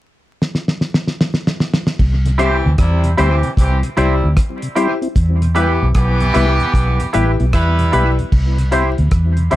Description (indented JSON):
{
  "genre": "roots reggae",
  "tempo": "76 BPM",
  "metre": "4/4",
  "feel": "swing 65% on 16ths",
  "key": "C major",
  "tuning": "A4 = 440 Hz",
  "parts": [
    { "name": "cloth-damped thuddy drum kit", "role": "drums", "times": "0.4-9.6 s", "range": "crash cymbal, hi-hat, kick drum, rim click, snare drum", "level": "-17 LUFS", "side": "equal", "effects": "tape echo" },
    { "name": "vintage muted fingered electric bass", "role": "bass", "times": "2.0-9.6 s", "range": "A1 to E2", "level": "-15 LUFS", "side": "equal", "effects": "none" },
    { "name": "mellow tonewheel organ", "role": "accompaniment", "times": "2.2-9.6 s", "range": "E2 to E4", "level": "-24 LUFS", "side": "left 2 dB", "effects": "slow rotary speaker, tape echo" },
    { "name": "clear horn section", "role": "second line", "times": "2.4-8.1 s", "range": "C3 to B4", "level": "-21 LUFS", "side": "right 2 dB", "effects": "tape echo" },
    { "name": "twangy electric guitar", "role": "accompaniment", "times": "2.4-9.6 s", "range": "E4 to C5", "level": "-22 LUFS", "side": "right 3 dB", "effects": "analog chorus, tape echo" },
    { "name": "clear upright piano", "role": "stabs", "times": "2.4-9.6 s", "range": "E4 to E5", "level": "-20 LUFS", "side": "left 5 dB", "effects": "none" }
  ],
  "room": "light reverb",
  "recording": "vinyl crackle",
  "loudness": "-13 LUFS",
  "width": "side -15 dB against mid",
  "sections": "0.0-2.0 A section; 2.0-8.3 B section; 8.3-9.6 C section",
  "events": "drum fill 0.4-2.0",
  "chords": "0.0 N.C.; 2.0 C; 5.2 Em; 8.3 C"
}